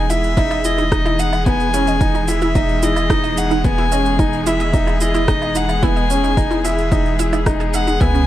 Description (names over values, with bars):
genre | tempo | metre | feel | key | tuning
piano and strings electronica | 110 BPM | 4/4 | straight | E major | A4 = 439 Hz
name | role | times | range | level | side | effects
rich violin | melody | 0.0-8.3 s | D#5 to G#5 | -22 LUFS | equal | none
rich studio string section | sustained chords | 0.0-8.3 s | C#3 to G#4 | -25 LUFS | left 2 dB | sidechain pumping
bright upright piano | riff | 0.0-8.2 s | B3 to E4 | -21 LUFS | left 1 dB | digital delay
warm sub bass | bass | 0.0-8.3 s | E1 to C#2 | -22 LUFS | equal | sidechain pumping
analog pluck | arpeggios | 0.1-8.2 s | C#4 to E5 | -25 LUFS | right 3 dB | chorus, cassette tape, sidechain pumping, digital delay
electronic shaker, woodblock and rim click | drums | 0.1-8.3 s | none | -26 LUFS | right 2 dB | overdrive
electronic kick drum | drums | 0.4-8.1 s | none | -19 LUFS | equal | overdrive
room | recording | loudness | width
little or no reverb | none | -14 LUFS | side -13 dB against mid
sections
0.0-8.3 A section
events
none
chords
0.0 Emaj7